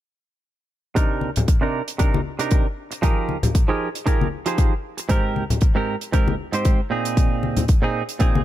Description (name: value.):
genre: nu-disco, nu disco.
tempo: 116 BPM.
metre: 4/4.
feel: swing 55% on 16ths.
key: C minor.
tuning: A4 = 438 Hz.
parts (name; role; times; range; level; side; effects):
direct-recorded clean electric guitar; riff; 1.0-8.4 s; Ab2 to C5; -24 LUFS; right 3 dB; wide subtle chorus, vintage 12-bit sampler grit, low-pass filter, ping-pong delay.
electronic kick drum; drums; 1.0-8.3 s; none; -18 LUFS; equal; none.
hi-hat; drums; 1.0-8.3 s; none; -32 LUFS; right 6 dB; none.
congas; percussion; 1.2-8.4 s; none; -23 LUFS; left 3 dB; none.
room: small room ambience.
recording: none.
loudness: -19 LUFS.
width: side -13 dB against mid.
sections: 1.0-8.4 A section.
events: none.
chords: 1.0 Cm9; 3.0 Fm11; 5.1 Abmaj9; 6.9 Bb9sus4.